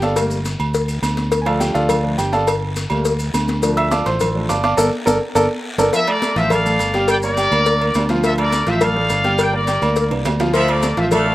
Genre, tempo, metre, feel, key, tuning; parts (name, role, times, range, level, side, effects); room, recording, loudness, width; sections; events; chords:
latin, salsa; 208 BPM; 4/4; straight; D minor; A4 = 440 Hz
bright concert grand piano; accompaniment; 0.0-11.3 s; F3 to E6; -20 LUFS; right 1 dB
fingered electric bass; bass; 0.0-11.3 s; G1 to D2; -21 LUFS; equal
congas; percussion; 0.0-11.3 s; -28 LUFS; left 2 dB
cowbell; percussion; 0.0-11.3 s; -23 LUFS; left 4 dB; slapback echo
guiro; percussion; 0.0-11.3 s; -35 LUFS; left 2 dB; slapback echo
maracas; percussion; 0.0-11.3 s; -32 LUFS; left 3 dB
agogo bells and timbales; percussion; 0.2-11.3 s; -26 LUFS; right 5 dB
bright trumpet section; melody; 5.9-11.3 s; A4 to G5; -19 LUFS; equal; slapback echo
clear saxophone section; second line; 10.5-11.3 s; F3 to A3; -20 LUFS; equal
little or no reverb; recorded outdoors, with no room sound; -15 LUFS; side -15 dB against mid
0.0-5.9 A section; 5.9-11.3 B section
grand piano solo 0.0-5.9; drum fill 4.8-5.9, 10.1-10.5; band accent 4.8-5.9
0.2 Gmadd9; 1.3 Dm; 2.5 Gmadd9; 3.6 Dm; 4.8 Gmadd9; 5.9 Dm; 7.1 Gm; 8.2 Dm; 9.4 Gm; 10.5 Gmadd9 (rootless)